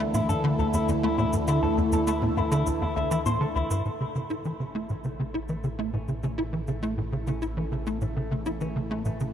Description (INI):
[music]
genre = ambient, sequencer-driven space music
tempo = 101 BPM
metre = 4/4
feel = straight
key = A major from 3.9 s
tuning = A4 = 440 Hz
[part]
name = phased analog pad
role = sustained chords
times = 0.0-9.3 s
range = C#3 to A4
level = -30 LUFS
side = equal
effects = phaser, chorus
[part]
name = tight sequencer bass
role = riff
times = 0.0-9.2 s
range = D2 to E4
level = -28 LUFS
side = equal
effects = ensemble chorus, ping-pong delay
[part]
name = analog drone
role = bass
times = 0.0-9.3 s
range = A1 to D2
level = -35 LUFS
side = equal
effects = chorus
[part]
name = electric guitar with an envelope filter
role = arpeggios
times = 0.1-9.2 s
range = A3 to E5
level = -33 LUFS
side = left 2 dB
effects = auto-pan, ping-pong delay
[part]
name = electronic toms and cabasa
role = percussion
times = 0.1-9.3 s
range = none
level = -40 LUFS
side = left 1 dB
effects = ping-pong delay
[sound]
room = wet huge ambient reverb, RT60 7.8 s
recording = none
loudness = -25 LUFS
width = side -9 dB against mid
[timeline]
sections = 0.0-3.9 A section; 3.9-9.3 B section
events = fade-in on clean electric guitar 3.9-9.3; fade-in on analog synth pad 3.9-9.3; fade-in on drum 3.9-9.3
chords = 0.0 Dsus2; 3.9 A